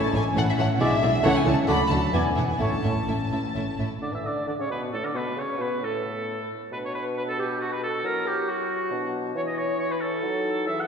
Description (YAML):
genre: quick classical-period movement for symphony orchestra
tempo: 135 BPM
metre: 3/4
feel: rubato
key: A major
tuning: A4 = 441 Hz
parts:
  - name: warm chamber violin section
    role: melody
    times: 0.0-3.8 s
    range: E5 to B5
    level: -30 LUFS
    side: left 3 dB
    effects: none
  - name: mellow large flute ensemble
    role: second line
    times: 0.0-10.9 s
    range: F#4 to B5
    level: -31 LUFS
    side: equal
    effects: none
  - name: warm clarinet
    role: second line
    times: 0.0-10.9 s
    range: A3 to G#4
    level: -35 LUFS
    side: left 2 dB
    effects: none
  - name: warm oboe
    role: second line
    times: 0.0-10.9 s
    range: F#4 to F#5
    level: -30 LUFS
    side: right 1 dB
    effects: none
  - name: warm bassoon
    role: accompaniment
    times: 0.0-10.9 s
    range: A2 to B3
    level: -31 LUFS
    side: right 1 dB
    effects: none
  - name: dark French horn section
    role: sustained chords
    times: 0.0-3.8 s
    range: E3 to D4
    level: -30 LUFS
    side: left 4 dB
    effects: none
  - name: warm chamber violin section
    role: second line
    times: 0.1-3.9 s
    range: E4 to F#5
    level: -34 LUFS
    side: left 1 dB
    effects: none
  - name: warm chamber viola section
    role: accompaniment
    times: 0.1-3.9 s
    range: E3 to E4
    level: -32 LUFS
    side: right 2 dB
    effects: none
  - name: warm chamber double bass section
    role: bass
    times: 0.1-3.9 s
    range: E1 to D2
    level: -29 LUFS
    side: right 1 dB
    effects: none
  - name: warm studio cello section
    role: bass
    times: 0.1-3.9 s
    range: E2 to D3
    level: -29 LUFS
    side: right 2 dB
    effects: none
room: wet church reverb, RT60 2.7 s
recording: heard from further back in the room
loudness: -23 LUFS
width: side -6 dB against mid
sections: 0.0-4.0 A section; 4.0-10.9 B section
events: none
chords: 0.0 A; 0.8 E7/B; 1.2 A/C#; 1.7 D; 2.1 E7; 2.6 A; 4.0 N.C.; 6.7 Bm; 8.0 F#7b9; 8.9 Bm; 9.4 N.C.; 10.2 D#dim/F#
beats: 0.36 0.80 | 1.24 1.68 2.13 | 2.60 3.07 3.55 | 4.02 4.47 4.92 | 5.38 5.83 6.28 | 6.73 7.17 7.61 | 8.05 8.48 8.92 | 9.36 9.80 10.24 | 10.69